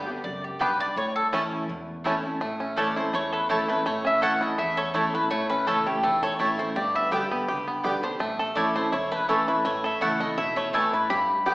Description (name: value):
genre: bluegrass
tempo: 166 BPM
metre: 4/4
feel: straight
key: A mixolydian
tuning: A4 = 440 Hz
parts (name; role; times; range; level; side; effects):
- picked steel-string acoustic guitar; accompaniment; 0.0-11.5 s; E2 to G4; -32 LUFS; equal; none
- mandolin; melody; 0.2-11.5 s; G4 to B5; -26 LUFS; equal; none
- upright bass; bass; 0.2-11.5 s; E1 to E2; -47 LUFS; equal; none
- bluegrass banjo; arpeggios; 0.6-11.5 s; E3 to A4; -29 LUFS; equal; none
- mandolin; stabs; 0.6-11.5 s; A3 to A5; -30 LUFS; right 1 dB; none
room: wet recital hall reverb, RT60 1.4 s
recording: recorded in a church or concert hall, AM radio sound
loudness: -23 LUFS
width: side -20 dB against mid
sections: 0.0-2.4 A section; 2.4-11.5 B section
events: none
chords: 0.0 G; 1.0 A; 6.8 G; 8.2 A